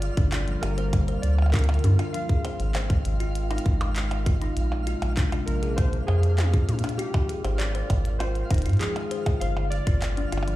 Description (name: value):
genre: IDM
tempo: 99 BPM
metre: 4/4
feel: straight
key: F dorian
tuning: A4 = 438 Hz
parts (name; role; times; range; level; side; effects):
- warbly lo-fi synth keys; melody; 0.0-10.6 s; G4 to F5; -34 LUFS; equal; chorus, dub echo
- warbly tape-like pad; sustained chords; 0.0-10.6 s; C3 to F4; -35 LUFS; right 1 dB; chorus, built-in reverb
- round analog bass; bass; 0.0-10.6 s; Eb1 to Bb2; -24 LUFS; equal; none
- glitchy drum kit; drums; 0.0-10.6 s; handclaps, hi-hat, percussion blips, toms; -35 LUFS; equal; none
- twinkling granular texture; texture; 0.0-10.6 s; F5; -41 LUFS; right 2 dB; built-in reverb, sidechain pumping
- kalimba; arpeggios; 0.2-10.5 s; F3 to F5; -34 LUFS; left 3 dB; tape echo
- electronic kick drum; drums; 0.2-10.0 s; none; -22 LUFS; equal; none
room: little or no reverb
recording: played on a big sound system in a bare room, large studio reverb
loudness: -22 LUFS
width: side -16 dB against mid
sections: 0.0-10.6 A section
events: none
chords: 0.0 Gm7; 2.1 Fm7/Ab; 4.6 Bb9; 7.0 Fm7/Ab; 9.4 Gm7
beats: 0.33 0.93 1.54 | 2.14 2.75 3.35 3.96 | 4.57 5.17 5.78 6.38 | 6.99 7.60 8.20 8.81 | 9.41 10.02